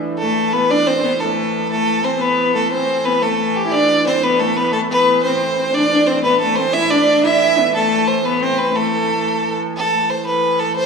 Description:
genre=medieval dance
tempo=119 BPM (dotted quarters)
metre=6/8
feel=straight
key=A minor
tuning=A4 = 444 Hz
part: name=dark hurdy-gurdy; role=drone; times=0.0-10.9 s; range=A2 to E3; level=-25 LUFS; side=right 2 dB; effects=none
part: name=bright fiddle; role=melody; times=0.2-10.9 s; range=G4 to E5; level=-16 LUFS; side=right 1 dB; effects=none
part: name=clear viola da gamba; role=second line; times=0.2-9.5 s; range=A3 to E4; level=-19 LUFS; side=left 2 dB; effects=none
room=wet recital hall reverb, RT60 1.8 s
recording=small room reverb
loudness=-14 LUFS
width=side -5 dB against mid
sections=0.0-1.7 A section; 1.7-9.8 B section; 9.8-10.9 B section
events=none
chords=none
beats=0.19 | 0.70 1.20 | 1.71 2.21 | 2.72 3.22 | 3.73 4.23 | 4.73 5.24 | 5.74 6.24 | 6.75 7.25 | 7.75 8.25 | 8.75 9.25 | 9.75 10.25 | 10.75

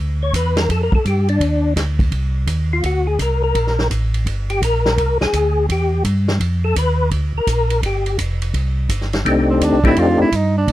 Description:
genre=soul jazz organ trio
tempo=168 BPM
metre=4/4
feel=swing 65% on 8ths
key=F mixolydian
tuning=A4 = 440 Hz
part: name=mellow tonewheel organ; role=bass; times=0.0-10.7 s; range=F1 to A2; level=-18 LUFS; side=equal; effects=chorus vibrato, slow rotary speaker
part: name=percussive tonewheel organ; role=melody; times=0.2-10.3 s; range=A3 to C#5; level=-18 LUFS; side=left 2 dB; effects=slow rotary speaker, chorus vibrato
part: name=vintage drum kit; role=drums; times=0.3-10.7 s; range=hi-hat, kick drum, ride cymbal, snare drum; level=-23 LUFS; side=right 1 dB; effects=none
part: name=warm tenor saxophone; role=melody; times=9.5-10.7 s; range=C4 to F4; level=-19 LUFS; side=right 4 dB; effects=none
room=little or no reverb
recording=dry, close 1970s-style studio recording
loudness=-15 LUFS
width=side -14 dB against mid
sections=0.0-9.2 A section; 9.2-10.7 A section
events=tonewheel organ solo 0.0-9.2; tenor saxophone solo 9.2-10.7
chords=0.0 Bmadd9; 0.7 Fsus2; 2.1 Cmadd11; 2.8 Daug7; 3.5 Gm; 5.0 Cadd9; 6.4 B7#11; 7.1 Bb; 7.8 Fsus2; 8.5 C5; 9.2 F13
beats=0.33 | 0.69 1.04 1.40 1.76 | 2.12 2.47 2.83 3.19 | 3.54 3.90 4.26 4.62 | 4.97 5.33 5.69 6.04 | 6.40 6.75 7.11 7.47 | 7.82 8.18 8.54 8.89 | 9.25 9.61 9.96 10.32 | 10.68

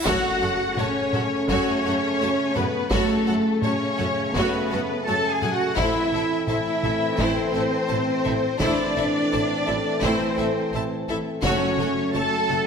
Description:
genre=cinematic, epic orchestral film score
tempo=84 BPM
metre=4/4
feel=straight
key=F# minor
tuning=A4 = 440 Hz
part: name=warm symphonic violin section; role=melody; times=0.0-12.7 s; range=A4 to A5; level=-27 LUFS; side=left 5 dB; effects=none
part: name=bright symphonic violin section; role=second line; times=0.0-12.6 s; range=E4 to A5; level=-30 LUFS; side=left 2 dB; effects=none
part: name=rich studio viola section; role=accompaniment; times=0.0-12.6 s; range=A3 to F#4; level=-30 LUFS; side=equal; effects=none
part: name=clear trombone section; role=sustained chords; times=0.0-12.7 s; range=C#3 to A3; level=-31 LUFS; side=right 2 dB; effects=none
part: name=dark French horn section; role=sustained chords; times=0.0-12.7 s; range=C4 to A4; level=-31 LUFS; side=left 3 dB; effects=none
part: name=warm symphonic cello section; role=bass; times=0.0-12.7 s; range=A3 to A4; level=-26 LUFS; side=right 2 dB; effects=none
part: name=cymbal swell and impact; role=sound effects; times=0.0-2.9 s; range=none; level=-35 LUFS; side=equal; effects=none
part: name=rich studio double bass section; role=bass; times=0.1-12.6 s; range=F#1 to F#2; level=-32 LUFS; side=right 4 dB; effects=none
part: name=taiko ensemble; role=drums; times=0.1-12.1 s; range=none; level=-30 LUFS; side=equal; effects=none
part: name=timpani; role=percussion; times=11.4-12.4 s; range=F#2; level=-34 LUFS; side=left 1 dB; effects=none
room=wet scoring stage reverb, RT60 1.6 s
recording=none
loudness=-20 LUFS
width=side -6 dB against mid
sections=0.1-12.7 A section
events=impact 0.1-2.9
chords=0.1 F#m; 5.8 Am; 11.4 F#m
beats=| 0.05 0.77 1.48 2.20 | 2.91 3.63 4.34 5.06 | 5.76 6.47 7.18 7.89 | 8.61 9.31 10.02 10.72 | 11.43 12.14

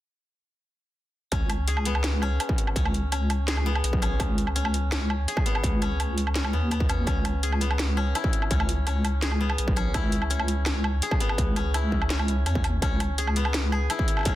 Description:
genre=half-time drum and bass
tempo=167 BPM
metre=4/4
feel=half-time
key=C# minor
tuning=A4 = 440 Hz
part: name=koto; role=arpeggios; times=1.3-14.3 s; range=B3 to G#4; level=-31 LUFS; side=left 3 dB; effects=tape echo
part: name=deep soft wobble bass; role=bass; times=1.3-14.3 s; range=B1 to E2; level=-25 LUFS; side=equal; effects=chorus
part: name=drum and bass drum kit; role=drums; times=1.3-14.3 s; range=hi-hat, snare drum, woodblock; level=-30 LUFS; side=right 1 dB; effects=none
part: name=electronic kick drum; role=drums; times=1.3-14.3 s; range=none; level=-26 LUFS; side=equal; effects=distortion
room=digital ambience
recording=dense, heavily limited modern master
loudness=-23 LUFS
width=side -14 dB against mid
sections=1.3-14.3 A section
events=none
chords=1.3 C#5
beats=| 1.32 1.68 2.04 2.40 | 2.76 3.12 3.48 3.84 | 4.20 4.56 4.92 5.28 | 5.64 6.00 6.35 6.71 | 7.07 7.43 7.79 8.15 | 8.51 8.87 9.23 9.59 | 9.95 10.31 10.67 11.03 | 11.38 11.74 12.10 12.46 | 12.82 13.18 13.54 13.90 | 14.26

